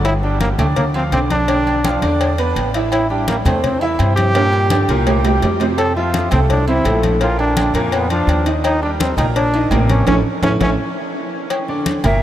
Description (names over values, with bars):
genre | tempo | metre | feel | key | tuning
latin, salsa | 168 BPM | 4/4 | straight | unclear | A4 = 440 Hz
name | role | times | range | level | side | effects
bright concert grand piano | accompaniment | 0.0-12.2 s | A2 to D6 | -21 LUFS | right 1 dB | wide subtle chorus
upright bass | bass | 0.0-12.2 s | G1 to G2 | -19 LUFS | equal | none
agogo bells and timbales | percussion | 0.0-12.2 s | none | -24 LUFS | right 5 dB | none
cowbell | percussion | 0.0-12.2 s | none | -25 LUFS | left 6 dB | none
bright trombone | melody | 0.1-10.7 s | A3 to A4 | -20 LUFS | equal | tape echo
congas | percussion | 0.1-12.2 s | none | -25 LUFS | left 1 dB | none
bright silver concert flute | melody | 12.1-12.2 s | E5 | -18 LUFS | equal | none
room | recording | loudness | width
moderate huge ambient reverb, RT60 7.4 s | dreamy mix soaked in reverb | -14 LUFS | side -12 dB against mid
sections
0.0-11.5 A section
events
drum fill 4.4-5.8, 10.6-11.5; band accent 10.1-11.5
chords
0.0 G5; 1.5 Bdim; 2.2 E5; 2.9 Am7; 4.4 Gm; 5.1 C5; 5.8 Fmaj7; 7.2 Bb; 8.6 Eb6; 10.1 A; 11.5 Dsus4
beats
| 0.05 0.41 0.77 1.12 | 1.48 1.84 2.20 2.56 | 2.92 3.28 3.63 3.99 | 4.35 4.71 5.07 5.42 | 5.78 6.14 6.50 6.86 | 7.21 7.57 7.93 8.29 | 8.65 9.00 9.36 9.72 | 10.08 10.44 10.79 11.15 | 11.51 11.86 12.22